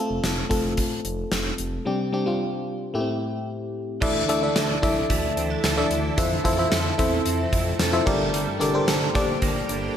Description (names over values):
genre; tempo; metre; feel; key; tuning
1980s-style pop; 111 BPM; 4/4; straight; D minor; A4 = 438 Hz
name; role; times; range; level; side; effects
FM electric piano; accompaniment; 0.0-10.0 s; G2 to E5; -24 LUFS; left 2 dB; chorus, slapback echo
smooth synth bass; bass; 0.1-9.9 s; F1 to F2; -29 LUFS; equal; none
gated 80s drum kit; drums; 0.2-9.8 s; crash cymbal, hi-hat, kick drum, snare drum, tambourine; -26 LUFS; equal; none
granular cloud pad; sustained chords; 5.1-10.0 s; C3 to A4; -32 LUFS; right 1 dB; built-in reverb
direct-recorded clean electric guitar; riff; 4.0-10.0 s; E3 to A4; -30 LUFS; right 7 dB; ensemble chorus, digital delay
room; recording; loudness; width
wet lush hall reverb, RT60 1.9 s, small room reverb; big arena sound; -21 LUFS; side -9 dB against mid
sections
0.0-4.0 A section; 4.0-10.0 B section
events
none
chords
0.0 F; 1.9 Csus2; 2.9 Am7; 4.0 Dsus2; 6.2 Fmaj7; 8.1 Gmadd9